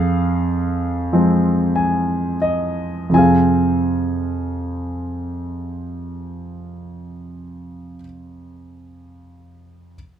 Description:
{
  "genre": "classical, lyrical solo piano",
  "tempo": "27-40 BPM (dotted quarters)",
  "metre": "6/8",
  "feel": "rubato",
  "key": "F minor",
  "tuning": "A4 = 440 Hz",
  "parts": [
    { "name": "warm concert grand piano", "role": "solo", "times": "0.0-10.0 s", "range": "F2 to Ab5", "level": "-18 LUFS", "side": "equal", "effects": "none" }
  ],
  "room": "little or no reverb",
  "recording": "close, detailed microphones",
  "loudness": "-17 LUFS",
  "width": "side -9 dB against mid",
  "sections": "0.0-3.1 A section; 3.1-7.4 B section",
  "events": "slowing down 0.0-3.1; grand piano fill 1.1-3.1",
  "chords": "0.0 Fm"
}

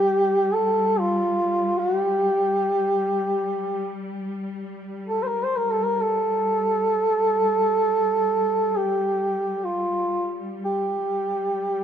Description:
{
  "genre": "caucasian folk, Caucasian lament",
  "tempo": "free time",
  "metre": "none",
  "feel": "none",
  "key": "G minor",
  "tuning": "A4 = 440 Hz",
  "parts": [
    { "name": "mellow duduk", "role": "melody", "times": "0.0-11.8 s", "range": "F4 to C5", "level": "-21 LUFS", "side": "equal", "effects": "none" },
    { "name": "rich studio cello section", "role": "drone", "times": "0.0-11.8 s", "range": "G3", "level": "-32 LUFS", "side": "left 1 dB", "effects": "none" }
  ],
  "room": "moderate lush hall reverb, RT60 2.5 s",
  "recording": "rough home demo mix",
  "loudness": "-21 LUFS",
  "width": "side -8 dB against mid",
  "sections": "0.0-11.8 A section",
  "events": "none",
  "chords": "none"
}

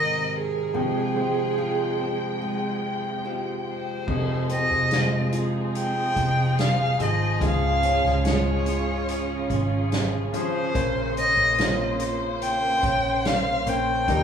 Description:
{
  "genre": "pop ballad",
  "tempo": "72 BPM",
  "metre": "4/4",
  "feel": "straight",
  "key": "unclear",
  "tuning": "A4 = 436 Hz",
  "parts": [
    { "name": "warm violin", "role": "melody", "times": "0.0-14.2 s", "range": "Ab4 to G5", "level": "-25 LUFS", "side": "equal", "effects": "none" },
    { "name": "clear concert grand piano", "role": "accompaniment", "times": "0.0-14.2 s", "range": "F2 to G5", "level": "-31 LUFS", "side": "left 2 dB", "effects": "none" },
    { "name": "warm symphonic string section", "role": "sustained chords", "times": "0.0-14.2 s", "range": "F2 to G5", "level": "-31 LUFS", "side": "equal", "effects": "none" },
    { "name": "nylon-string guitar", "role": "arpeggios", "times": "0.0-14.2 s", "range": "F2 to Bb4", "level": "-31 LUFS", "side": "right 2 dB", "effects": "none" },
    { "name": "vintage muted fingered electric bass", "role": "bass", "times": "4.1-14.2 s", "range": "F1 to Eb2", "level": "-27 LUFS", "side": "equal", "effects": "none" },
    { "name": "soft-mallet drum kit", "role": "drums", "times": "4.1-14.2 s", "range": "crash cymbal, hi-hat, kick drum, snare drum", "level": "-30 LUFS", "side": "equal", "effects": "none" }
  ],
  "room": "wet studio ambience, RT60 0.5 s",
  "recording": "band playing live in one room, studio reverb",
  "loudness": "-21 LUFS",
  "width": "side -7 dB against mid",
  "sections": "0.0-4.1 A section; 4.1-14.2 B section",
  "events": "none",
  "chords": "0.0 Abadd9; 0.7 Fmadd9; 4.1 Fm7; 7.4 Db; 10.7 Bbmadd9"
}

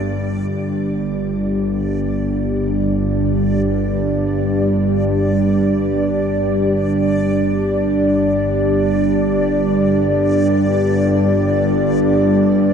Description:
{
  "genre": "dark ambient drone",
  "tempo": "free time",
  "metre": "none",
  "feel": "none",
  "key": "unclear",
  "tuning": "A4 = 440 Hz",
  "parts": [
    { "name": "dark analog pad", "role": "sustained chords", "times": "0.0-12.7 s", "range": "G3 to D5", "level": "-17 LUFS", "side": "right 1 dB", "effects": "chorus, shimmer reverb" },
    { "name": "bowed-like drone", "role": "drone", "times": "0.0-12.7 s", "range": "G1 to G2", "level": "-18 LUFS", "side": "left 1 dB", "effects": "built-in reverb" },
    { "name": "backwards swelling texture", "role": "texture", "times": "0.0-12.7 s", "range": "D5", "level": "-34 LUFS", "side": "right 3 dB", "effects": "built-in reverb, shimmer reverb" }
  ],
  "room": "wet huge ambient reverb, RT60 7.6 s",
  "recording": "dark, warm production",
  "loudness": "-15 LUFS",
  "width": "side -7 dB against mid",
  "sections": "0.1-12.7 A section",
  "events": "fade-in on synth texture 0.1-12.7",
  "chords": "0.1 G5"
}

